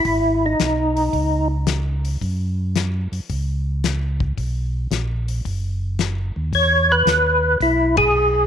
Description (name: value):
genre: soul jazz organ trio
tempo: 111 BPM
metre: 4/4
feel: swing 68% on 8ths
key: unclear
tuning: A4 = 439 Hz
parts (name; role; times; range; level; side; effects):
- percussive tonewheel organ; melody; 0.0-1.5, 6.5-8.5 s; D#4 to C#5; -16 LUFS; equal; slow rotary speaker, chorus vibrato, slapback echo
- mellow tonewheel organ; bass; 0.1-8.5 s; F#1 to F#2; -22 LUFS; equal; overdrive, chorus vibrato, slow rotary speaker
- warm soul drum kit; drums; 0.1-8.1 s; hi-hat, kick drum, ride cymbal, snare drum; -26 LUFS; left 6 dB; none
room: light reverb, small room ambience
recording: 1960s-style stereo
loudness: -18 LUFS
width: side -8 dB against mid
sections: 0.0-8.5 A section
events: band accent 7.9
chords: 0.1 G#m; 1.1 N.C.; 2.2 F#5; 4.4 B; 6.5 Emaj7